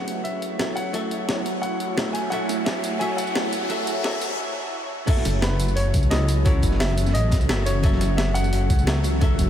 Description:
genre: liquid drum and bass.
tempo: 174 BPM.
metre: 4/4.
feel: straight.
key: F# minor.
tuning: A4 = 441 Hz.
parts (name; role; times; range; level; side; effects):
bright baby grand piano; melody; 0.0-8.8 s; B4 to G#5; -30 LUFS; left 1 dB; ping-pong delay.
archtop guitar, miked and amplified; accompaniment; 0.0-9.5 s; F#3 to E5; -30 LUFS; equal; diffuse ambient delay.
ethereal airy pad; sustained chords; 0.0-9.5 s; E3 to C#5; -29 LUFS; equal; ensemble chorus, built-in reverb.
riser; sound effects; 1.2-4.4 s; none; -37 LUFS; left 2 dB; none.
breakbeat sampler-style drum kit; drums; 0.1-9.5 s; crash cymbal, hi-hat, snare drum, tambourine; -29 LUFS; equal; none.
crunchy breakbeat drum kit; drums; 5.1-9.5 s; hi-hat, snare drum; -35 LUFS; equal; none.
electronic kick drum; drums; 5.1-9.5 s; none; -20 LUFS; equal; none.
dark detuned saw bass; bass; 5.3-9.5 s; F#1 to C#2; -22 LUFS; equal; none.
room: moderate huge ambient reverb, RT60 8.0 s.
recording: dreamy mix soaked in reverb, high-pass filter.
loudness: -20 LUFS.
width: side -10 dB against mid.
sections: 0.0-5.1 A section; 5.1-9.5 B section.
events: build-up 0.0-5.1; filter sweep on ambient pad 0.0-5.1; riser 1.2-4.4; break 4.4-5.1; drop 5.1-9.5.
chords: 0.0 F#m7.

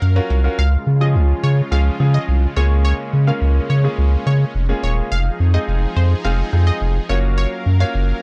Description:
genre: pop.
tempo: 106 BPM.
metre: 4/4.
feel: straight.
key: Db major.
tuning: A4 = 440 Hz.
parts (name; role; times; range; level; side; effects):
filtered supersaw swell; sustained chords; 0.0-8.2 s; Db3 to F5; -32 LUFS; equal; none.
saturated sub bass; bass; 0.0-8.1 s; Eb1 to Db3; -17 LUFS; equal; none.
clear concert grand piano; accompaniment; 0.2-8.2 s; F3 to Db5; -28 LUFS; equal; none.
analog pluck; melody; 0.6-7.9 s; C5 to F5; -30 LUFS; equal; chorus, tape echo.
room: digital ambience.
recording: dry, gritty hardware recording, transformer saturation, cassette tape.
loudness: -17 LUFS.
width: mono.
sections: 0.6-8.2 A section.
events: drop 0.6-8.2.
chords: 0.0 Gbmaj7; 0.6 Db; 2.6 Bbm7/Db; 5.1 Fm7; 7.1 Gbmaj7.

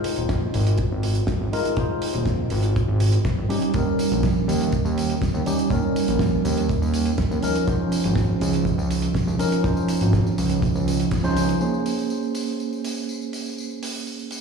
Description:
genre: nu-disco, nu disco.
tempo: 122 BPM.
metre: 4/4.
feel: straight.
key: Bb dorian.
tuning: A4 = 440 Hz.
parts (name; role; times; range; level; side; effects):
tine electric piano; accompaniment; 0.0-14.4 s; F3 to C5; -24 LUFS; right 1 dB; medium stereo tremolo, dub echo.
damped 70s drum kit; drums; 0.0-14.4 s; hi-hat, snare drum, tambourine; -30 LUFS; right 1 dB; small room ambience.
fat analog bass; bass; 0.2-11.5 s; Eb1 to Eb2; -22 LUFS; right 1 dB; none.
kick drum; drums; 0.3-11.2 s; none; -25 LUFS; equal; small room ambience.
room: light reverb, studio reverb.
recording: played on a big sound system in a bare room, large studio reverb, small room reverb.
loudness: -20 LUFS.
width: side -5 dB against mid.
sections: 0.0-11.6 A section; 11.6-14.4 B section.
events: band accent 11.1.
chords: 0.0 Ab6; 3.5 Eb7; 7.4 Dbmaj9; 11.6 Bbm9.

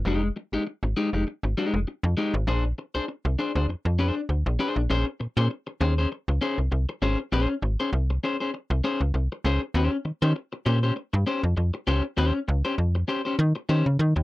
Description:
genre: funk.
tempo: 99 BPM.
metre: 4/4.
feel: swing 56% on 16ths.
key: unclear.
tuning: A4 = 440 Hz.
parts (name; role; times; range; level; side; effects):
slap-like FM bass; bass; 0.0-14.2 s; F1 to Eb3; -23 LUFS; equal; none.
electric guitar at the edge of break-up; accompaniment; 0.1-14.2 s; Ab3 to C5; -27 LUFS; left 2 dB; none.
room: little or no reverb.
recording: dry, close 1970s-style studio recording.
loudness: -23 LUFS.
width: side -18 dB against mid.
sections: 0.0-4.9 A section; 4.9-14.2 B section.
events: none.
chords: 0.0 Fm9; 2.5 Bb9; 4.9 Bbm9 (rootless); 9.7 Eb13.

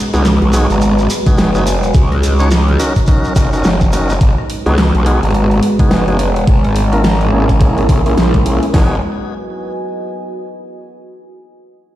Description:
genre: glitch hop.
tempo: 106 BPM.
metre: 4/4.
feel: swing 60% on 16ths.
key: G# minor.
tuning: A4 = 439 Hz.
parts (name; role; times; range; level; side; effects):
dark analog pad; sustained chords; 0.0-9.0 s; F#3 to C#5; -19 LUFS; right 1 dB; chorus, sidechain pumping.
deep dark ambient pad; texture; 0.7-11.0 s; E4 to A#5; -24 LUFS; right 1 dB; chorus, built-in reverb, sidechain pumping.
tonewheel organ; stabs; 0.1-9.0 s; A#3 to C#5; -20 LUFS; left 1 dB; overdrive, sidechain pumping, low-pass filter, ping-pong delay.
growl bass; bass; 0.1-9.0 s; F#1 to C#2; -14 LUFS; equal; chorus.
dubstep drum kit; drums; 0.1-8.7 s; hi-hat, rim click, snare drum; -19 LUFS; right 1 dB; overdrive.
shekere; percussion; 0.1-4.2 s; none; -28 LUFS; right 2 dB; none.
dubstep drum kit; drums; 1.3-8.9 s; hi-hat, kick drum, snare drum; -12 LUFS; equal; overdrive.
room: little or no reverb.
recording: played on a big sound system in a bare room, stone room reverb.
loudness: -10 LUFS.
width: side -14 dB against mid.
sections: 0.0-8.7 A section; 8.7-11.0 B section.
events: filter sweep on tonewheel organ 0.0-8.7.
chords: 0.0 G#m7; 1.9 D#m7; 4.2 G#m7; 6.5 A#m7b5; 8.7 G#m7.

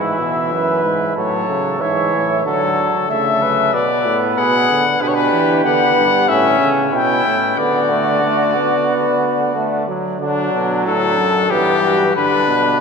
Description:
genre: classical, imitative canzona for brass ensemble.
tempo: 93 BPM.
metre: 4/4.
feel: straight.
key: D major from 5.0 s.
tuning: A4 = 440 Hz.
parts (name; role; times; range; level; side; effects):
clear trumpet; melody; 0.0-12.8 s; D4 to G5; -18 LUFS; left 6 dB; none.
clear flugelhorn; second line; 0.0-12.8 s; B3 to C#5; -21 LUFS; right 4 dB; none.
brilliant trombone; accompaniment; 0.0-12.8 s; D3 to D4; -20 LUFS; right 2 dB; none.
clear euphonium; bass; 0.0-12.8 s; F#2 to E3; -22 LUFS; right 2 dB; none.
room: wet cathedral reverb, RT60 4.1 s.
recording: minimal, uncompressed stereo recording.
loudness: -14 LUFS.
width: side -5 dB against mid.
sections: 0.0-10.2 A section; 10.2-12.8 B section.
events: none.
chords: 0.0 E/G#; 1.2 A; 2.5 D; 3.7 G#dim; 5.0 G/B; 6.3 A; 7.6 D; 11.5 Em/G.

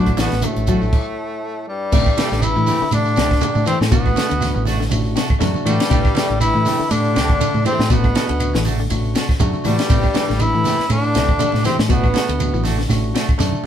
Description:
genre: afrobeat.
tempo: 120 BPM.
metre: 4/4.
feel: swing 56% on 16ths.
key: A dorian.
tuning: A4 = 438 Hz.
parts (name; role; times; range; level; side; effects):
breathy tenor saxophone; melody; 0.0-12.6 s; G3 to E4; -22 LUFS; left 1 dB; none.
breathy trombone; second line; 0.0-12.6 s; G3 to E4; -28 LUFS; right 2 dB; none.
brilliant bass trombone; second line; 0.0-12.6 s; G2 to E3; -29 LUFS; left 3 dB; analog delay.
clean electric guitar; arpeggios; 0.0-13.6 s; B2 to F#3; -25 LUFS; left 6 dB; spring reverb.
clean electric guitar; stabs; 0.0-13.3 s; E3 to G4; -28 LUFS; right 6 dB; tremolo.
fingered electric bass; bass; 0.0-13.5 s; A1 to A2; -21 LUFS; equal; none.
barky tine electric piano; accompaniment; 0.1-13.7 s; A3 to A4; -30 LUFS; left 2 dB; none.
compact cocktail drum kit; drums; 0.1-13.5 s; crash cymbal, hi-hat, kick drum, ride cymbal, snare drum; -20 LUFS; equal; none.
claves; percussion; 0.1-13.4 s; none; -38 LUFS; left 6 dB; none.
shekere; percussion; 0.1-13.7 s; none; -27 LUFS; right 4 dB; none.
congas; percussion; 0.2-13.7 s; none; -27 LUFS; right 6 dB; none.
room: moderate studio reverb, RT60 0.7 s.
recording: band playing live in one room.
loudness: -15 LUFS.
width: side -9 dB against mid.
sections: 0.0-1.9 A section; 1.9-13.7 B section.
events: stop 0.9-1.9.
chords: 0.0 A13sus4; 1.9 Am7; 3.9 Bm7/A; 5.9 Am7; 7.9 Bm7/A; 9.9 Am7; 11.9 Bm7/A.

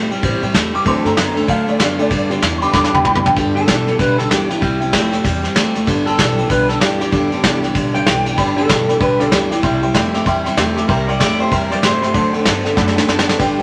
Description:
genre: rockabilly.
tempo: 192 BPM.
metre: 4/4.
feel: swing 62% on 8ths.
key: G major.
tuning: A4 = 440 Hz.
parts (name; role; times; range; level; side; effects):
honky-tonk upright piano; accompaniment; 0.0-3.4, 8.4-13.6 s; D3 to D6; -23 LUFS; equal; none.
picked steel-string acoustic guitar; accompaniment; 0.0-13.6 s; G2 to A4; -25 LUFS; equal; none.
electric guitar through a small old amp; riff; 0.0-13.6 s; G2 to B3; -23 LUFS; equal; none.
upright bass; bass; 0.0-13.6 s; F#1 to A2; -28 LUFS; equal; none.
soft brush drum kit; drums; 0.1-13.6 s; kick drum, ride cymbal, snare drum, toms; -20 LUFS; equal; none.
electric guitar through a small old amp; melody; 3.6-12.7 s; E4 to G5; -22 LUFS; equal; phaser.
room: moderate studio reverb, RT60 0.8 s.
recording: none.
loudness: -16 LUFS.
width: mono.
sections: 0.0-3.4 A section; 3.4-13.4 B section.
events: honky-tonk piano solo 0.0-3.4; drum fill 2.7-3.4, 12.8-13.4; honky-tonk piano fill 12.5-13.4.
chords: 0.0 C; 0.9 D7; 2.1 G; 4.6 C; 5.9 G; 9.6 C; 12.1 D7.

